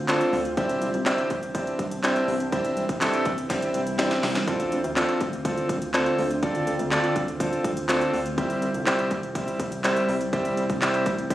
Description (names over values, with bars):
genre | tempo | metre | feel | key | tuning
dance-pop | 123 BPM | 4/4 | straight | D minor | A4 = 440 Hz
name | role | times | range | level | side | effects
ethereal airy pad | sustained chords | 0.0-11.3 s | C3 to F4 | -33 LUFS | right 1 dB | ensemble chorus, built-in reverb, sidechain pumping
chorused synth bass | bass | 0.0-11.3 s | C2 to D2 | -32 LUFS | equal | sidechain pumping
clear concert grand piano | accompaniment | 0.1-11.3 s | G3 to D5 | -25 LUFS | equal | sidechain pumping
house drum kit | drums | 0.1-11.3 s | handclaps, hi-hat, kick drum, snare drum | -28 LUFS | equal | none
room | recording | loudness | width
light reverb, digital ambience | recorded on a phone in the room, studio reverb | -22 LUFS | side -14 dB against mid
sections
0.0-4.5 A section; 4.5-11.3 A section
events
drop 0.0-4.5, 4.5-11.3; drum fill 3.5-4.5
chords
0.0 Dm7; 0.6 Cadd9; 4.5 Dm7; 8.4 C